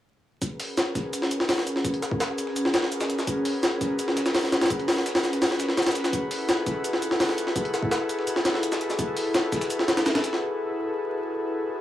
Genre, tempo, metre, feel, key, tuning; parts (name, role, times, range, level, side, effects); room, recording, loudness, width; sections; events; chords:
drum and bass, jungle; 168 BPM; 4/4; straight; A4 = 439 Hz
airy breathy pad; sustained chords; 0.4-11.8 s; C#4 to B4; -27 LUFS; left 1 dB; chorus, vintage 12-bit sampler grit
dusty soul sampler-style drum kit; drums; 0.4-10.4 s; hi-hat, shaker, snare drum; -37 LUFS; equal; high-pass filter on perc, high-pass filter on snare, high-pass filter on hats
jungle sampler-style drum kit; drums; 0.4-10.4 s; hi-hat, kick drum, snare drum; -25 LUFS; equal; overdrive, high-pass filter on kick, high-pass filter on hats, high-pass filter on snare
light reverb; dry, gritty hardware recording, vinyl crackle, small room ambience; -23 LUFS; side -12 dB against mid
0.4-11.8 A section
break 10.4-11.8
0.4 G#m11; 6.1 F#m11